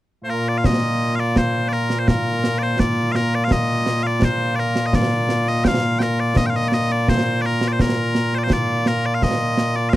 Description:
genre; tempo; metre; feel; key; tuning
scottish traditional, Scottish pipe music; 84 BPM; 2/4; straight; Bb major; A4 = 440 Hz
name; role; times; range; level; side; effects
loud bright bagpipes; melody; 0.2-10.0 s; Bb2 to G5; -19 LUFS; equal; none
concert snare drum and concert bass drum; drums; 0.6-10.0 s; none; -21 LUFS; right 1 dB; none
room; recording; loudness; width
light reverb; dry, close 1970s-style studio recording; -17 LUFS; side -15 dB against mid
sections
0.7-10.0 A section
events
none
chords
none

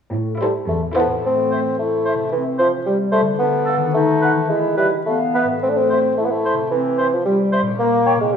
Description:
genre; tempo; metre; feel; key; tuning
cinematic, playful, whimsical film cue; 110 BPM; 2/4; straight; A minor; A4 = 440 Hz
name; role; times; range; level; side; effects
concert harp; arpeggios; 0.1-8.4 s; A2 to D5; -26 LUFS; left 7 dB; none
warm chamber cello section; bass; 0.1-1.1 s; E2 to A2; -25 LUFS; right 1 dB; none
warm studio violin section; melody; 0.4-1.2 s; C5; -27 LUFS; left 2 dB; none
warm chamber violin section; second line; 0.4-1.2 s; A4; -29 LUFS; left 4 dB; none
mellow bassoon; accompaniment; 0.4-8.4 s; E3 to D4; -18 LUFS; equal; none
warm studio viola section; accompaniment; 0.4-1.2 s; E4; -30 LUFS; right 3 dB; none
clear clarinet; second line; 1.2-8.4 s; G3 to E4; -23 LUFS; left 1 dB; none
mellow hollow small flute group; second line; 1.5-8.1 s; E5 to G5; -27 LUFS; left 2 dB; none
warm oboe; second line; 1.5-8.2 s; A4 to Db5; -25 LUFS; right 2 dB; none
room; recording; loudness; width
wet scoring stage reverb, RT60 1.9 s; worn, warbling old tape, cassette tape, warbly pitch drift; -16 LUFS; side -7 dB against mid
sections
0.1-1.2 A section; 1.2-8.4 B section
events
none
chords
0.1 Am; 2.3 C; 3.4 Dm; 3.9 B7/D#; 4.5 E5; 5.6 Am; 6.7 C; 7.8 Gdim/Bb

